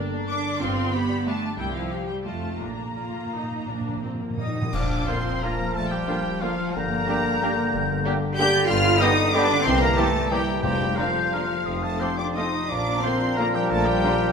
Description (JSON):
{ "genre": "classical, orchestral ballroom waltz", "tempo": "158-201 BPM", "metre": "3/4", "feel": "rubato", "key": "Bb major", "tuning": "A4 = 439 Hz", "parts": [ { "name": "rich studio violin section", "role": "melody", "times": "0.0-14.3 s", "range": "D5 to G6", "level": "-29 LUFS", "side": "left 3 dB", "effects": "none" }, { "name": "rich studio violin section", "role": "second line", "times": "0.0-14.1 s", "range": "B3 to D6", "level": "-34 LUFS", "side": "left 3 dB", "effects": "none" }, { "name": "rich studio viola section", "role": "accompaniment", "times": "0.0-14.1 s", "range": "D3 to G4", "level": "-34 LUFS", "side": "right 1 dB", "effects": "none" }, { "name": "concert harp", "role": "arpeggios", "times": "0.0-14.3 s", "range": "F2 to D5", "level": "-31 LUFS", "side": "left 7 dB", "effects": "none" }, { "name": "clear studio cello section", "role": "bass", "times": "0.0-14.3 s", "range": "F3 to G4", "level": "-30 LUFS", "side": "right 3 dB", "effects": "none" }, { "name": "rich studio double bass section", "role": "bass", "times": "0.6-14.0 s", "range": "F1 to F2", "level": "-31 LUFS", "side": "right 3 dB", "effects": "none" }, { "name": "timpani", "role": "percussion", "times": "2.6-4.7, 10.6-11.1 s", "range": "F2 to Bb2", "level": "-33 LUFS", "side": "left 1 dB", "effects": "none" }, { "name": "warm oboe", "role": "second line", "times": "4.4-14.3 s", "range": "F4 to G5", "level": "-30 LUFS", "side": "right 2 dB", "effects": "none" }, { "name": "mellow French horn section", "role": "sustained chords", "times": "4.4-14.3 s", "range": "F3 to G4", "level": "-29 LUFS", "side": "left 3 dB", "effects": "none" }, { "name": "small flute group", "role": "second line", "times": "4.7-14.3 s", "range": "Bb5 to A6", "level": "-32 LUFS", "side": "left 3 dB", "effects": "none" }, { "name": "mellow bassoon", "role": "accompaniment", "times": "4.7-14.3 s", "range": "D3 to F3", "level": "-30 LUFS", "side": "right 2 dB", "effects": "none" }, { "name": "clash cymbals and concert bass drum", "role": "percussion", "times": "4.7-5.4 s", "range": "none", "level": "-34 LUFS", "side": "equal", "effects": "none" }, { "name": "clear trombone section", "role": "sustained chords", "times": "5.1-14.3 s", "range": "D3 to D4", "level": "-33 LUFS", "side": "right 3 dB", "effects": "none" }, { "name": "clear trumpet section", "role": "stabs", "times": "5.1-14.3 s", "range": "F4 to Bb4", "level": "-33 LUFS", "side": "equal", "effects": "none" } ], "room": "wet concert hall reverb, RT60 2.0 s", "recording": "minimal, uncompressed stereo recording", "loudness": "-21 LUFS", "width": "side -6 dB against mid", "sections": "0.0-4.7 A section; 4.7-14.3 A section", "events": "timpani fill 2.6-4.7; band accent 4.7-5.1", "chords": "0.0 Gm; 0.6 G7; 1.6 C; 2.3 F7; 2.6 Bb; 6.8 Gm; 8.7 G7; 9.7 C7; 10.6 Bb/F; 11.7 F; 12.7 Bb", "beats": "0.30 | 0.61 0.93 1.26 | 1.58 1.90 2.25 | 2.60 2.96 3.33 | 3.68 4.03 4.39 | 4.74 5.07 5.43 | 5.75 6.08 6.42 | 6.75 7.08 7.42 | 7.73 8.05 8.38 | 8.69 9.00 9.34 | 9.65 9.97 10.31 | 10.64 10.97 11.33 | 11.67 12.01 12.37 | 12.71 13.04 13.38 | 13.70 14.03" }